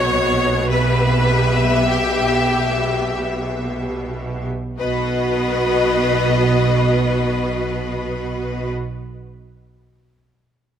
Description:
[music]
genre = classical, slow romantic movement for string orchestra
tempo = 36-53 BPM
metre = 3/4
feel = rubato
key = B major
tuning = A4 = 440 Hz
[part]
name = warm studio violin section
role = melody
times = 0.0-8.7 s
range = D#5 to E5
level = -24 LUFS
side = left 6 dB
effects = none
[part]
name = clear studio violin section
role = second line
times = 0.0-8.7 s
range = G4 to C#5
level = -22 LUFS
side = left 3 dB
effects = none
[part]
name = rich studio viola section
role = accompaniment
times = 0.0-8.7 s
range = B3 to G4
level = -23 LUFS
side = right 2 dB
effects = none
[part]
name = rich studio cello section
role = bass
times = 0.0-8.7 s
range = B2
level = -25 LUFS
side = right 2 dB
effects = none
[part]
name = rich studio double bass section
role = bass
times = 0.0-8.7 s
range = B1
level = -23 LUFS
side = right 3 dB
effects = none
[sound]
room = moderate concert hall reverb, RT60 1.9 s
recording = close, detailed microphones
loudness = -16 LUFS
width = side -9 dB against mid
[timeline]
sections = 0.0-4.8 A section; 4.8-9.0 B section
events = slowing down 0.0-4.8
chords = 0.0 B; 0.7 Em/B; 4.8 B

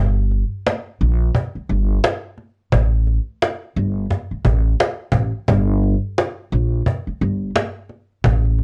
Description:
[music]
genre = hip hop, boom-bap hip-hop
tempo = 87 BPM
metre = 4/4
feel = swing 59% on 16ths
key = G minor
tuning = A4 = 440 Hz
[part]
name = upright bass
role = bass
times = 0.0-8.6 s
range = G1 to Bb1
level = -20 LUFS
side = equal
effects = none
[part]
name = cajon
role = drums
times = 0.3-8.6 s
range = none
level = -22 LUFS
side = equal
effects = none
[sound]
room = little or no reverb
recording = worn, warbling old tape, cassette tape, warbly pitch drift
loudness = -20 LUFS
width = mono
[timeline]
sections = 0.0-8.6 A section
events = none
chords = none

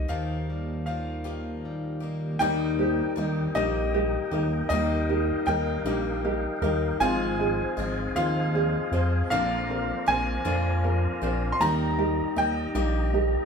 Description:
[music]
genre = folk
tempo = 52 BPM (dotted quarters)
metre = 6/8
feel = straight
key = Eb major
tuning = A4 = 440 Hz
[part]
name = bright upright piano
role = melody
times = 0.0-13.5 s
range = Eb5 to C6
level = -30 LUFS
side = equal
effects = none
[part]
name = fingerpicked plugged-in steel-string acoustic guitar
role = accompaniment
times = 0.0-4.7 s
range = Eb2 to G4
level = -40 LUFS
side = left 2 dB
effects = none
[part]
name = picked swing-style acoustic guitar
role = accompaniment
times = 0.0-13.5 s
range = Ab2 to G4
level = -32 LUFS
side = left 6 dB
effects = none
[part]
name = chorused synth bass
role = bass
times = 0.0-13.4 s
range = Ab1 to F2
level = -28 LUFS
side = equal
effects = none
[part]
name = felt-muted upright piano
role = accompaniment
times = 2.4-13.5 s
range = Ab1 to Eb5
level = -32 LUFS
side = left 1 dB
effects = none
[part]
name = mellow tonewheel organ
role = sustained chords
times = 2.4-13.5 s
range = G4 to Bb5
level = -36 LUFS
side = equal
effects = slow rotary speaker, chorus vibrato
[part]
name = ukulele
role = arpeggios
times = 2.4-13.5 s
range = D4 to C5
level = -31 LUFS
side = right 4 dB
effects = none
[sound]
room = moderate large studio reverb, RT60 0.8 s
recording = band playing live in one room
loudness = -24 LUFS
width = side -6 dB against mid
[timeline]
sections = 0.0-2.4 A section; 2.4-13.5 B section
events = none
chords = 0.1 Ebadd9; 2.4 Eb; 7.0 Ab6; 9.3 Bbadd9; 11.6 Eb

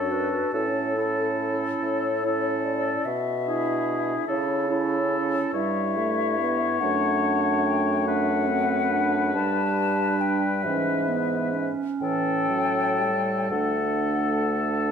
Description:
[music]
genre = classical, slow romantic movement for wind quintet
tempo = 38-49 BPM (dotted quarters)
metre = 6/8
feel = rubato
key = D major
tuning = A4 = 440 Hz
[part]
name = hollow concert flute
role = melody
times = 0.0-14.9 s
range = A4 to A5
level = -29 LUFS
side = left 9 dB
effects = none
[part]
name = warm oboe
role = second line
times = 0.0-14.9 s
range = G#4 to C#5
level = -28 LUFS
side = left 4 dB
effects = none
[part]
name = warm French horn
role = accompaniment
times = 0.0-14.9 s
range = E3 to D4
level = -30 LUFS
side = right 1 dB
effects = none
[part]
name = warm clarinet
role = accompaniment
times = 0.0-14.9 s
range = B3 to F#4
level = -29 LUFS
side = right 6 dB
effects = none
[part]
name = warm bassoon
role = bass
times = 0.0-14.9 s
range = D2 to C#3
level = -29 LUFS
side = right 2 dB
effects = none
[sound]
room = wet recital hall reverb, RT60 1.3 s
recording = minimal, uncompressed stereo recording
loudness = -22 LUFS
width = side -7 dB against mid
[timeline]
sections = 0.0-14.9 A section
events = none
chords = 0.0 D/F#; 0.5 A; 3.1 E7/B; 4.3 A/C#; 5.5 A7/G; 6.8 D/F#; 8.1 D7/F#; 9.3 G; 10.6 E/G#; 12.0 A; 13.5 D

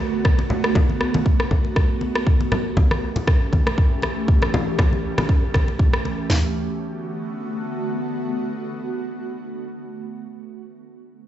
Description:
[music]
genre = afro house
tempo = 119 BPM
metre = 4/4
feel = swing 56% on 16ths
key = B minor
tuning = A4 = 442 Hz
[part]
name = ethereal airy pad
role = sustained chords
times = 0.0-10.4 s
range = D3 to G4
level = -26 LUFS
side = right 1 dB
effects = ensemble chorus, built-in reverb, phaser, sidechain pumping
[part]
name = house drum kit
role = drums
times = 0.2-6.4 s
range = kick drum, snare drum, toms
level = -18 LUFS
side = equal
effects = none
[part]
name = electronic rim click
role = drums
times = 0.3-6.0 s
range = none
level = -26 LUFS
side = equal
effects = none
[part]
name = congas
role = percussion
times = 0.4-6.2 s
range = none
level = -25 LUFS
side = left 1 dB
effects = none
[sound]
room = light reverb, digital ambience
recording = played on a big sound system in a bare room, stone room reverb, nothing above 7.9 kHz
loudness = -18 LUFS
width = side -12 dB against mid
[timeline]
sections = 0.0-6.3 A section; 6.3-10.3 B section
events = none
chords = 0.0 Bm7; 2.3 A7; 6.3 Bm7

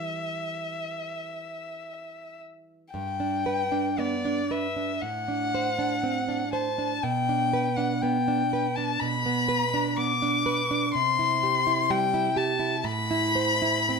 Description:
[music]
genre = romantic duo for violin and classical guitar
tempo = 52-64 BPM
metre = 4/4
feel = rubato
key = unclear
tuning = A4 = 437 Hz
[part]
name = warm violin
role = melody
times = 0.0-14.0 s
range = D5 to D6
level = -27 LUFS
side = left 6 dB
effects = slapback echo
[part]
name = nylon-string guitar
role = accompaniment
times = 0.0-14.0 s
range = G2 to C5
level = -28 LUFS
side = right 4 dB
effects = none
[sound]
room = moderate studio reverb, RT60 0.7 s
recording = none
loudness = -24 LUFS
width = side -4 dB against mid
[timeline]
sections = 0.0-2.9 A section; 2.9-14.0 B section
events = none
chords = 0.0 Em; 2.9 G; 5.0 D7/A; 7.0 Bm; 10.9 C; 12.9 Am

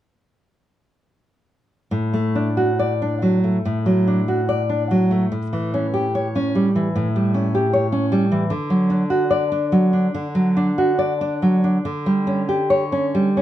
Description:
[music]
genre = classical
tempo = 66-77 BPM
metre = 4/4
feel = rubato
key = D major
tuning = A4 = 441 Hz
[part]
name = nylon-string guitar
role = accompaniment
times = 1.9-13.4 s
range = A2 to D5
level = -17 LUFS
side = equal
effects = none
[sound]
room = moderate small room ambience, RT60 0.5 s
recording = none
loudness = -17 LUFS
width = side -12 dB against mid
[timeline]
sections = 1.9-13.4 A section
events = none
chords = 1.9 D/A; 5.3 A7; 8.5 D; 11.9 Bmadd9/D (rootless)

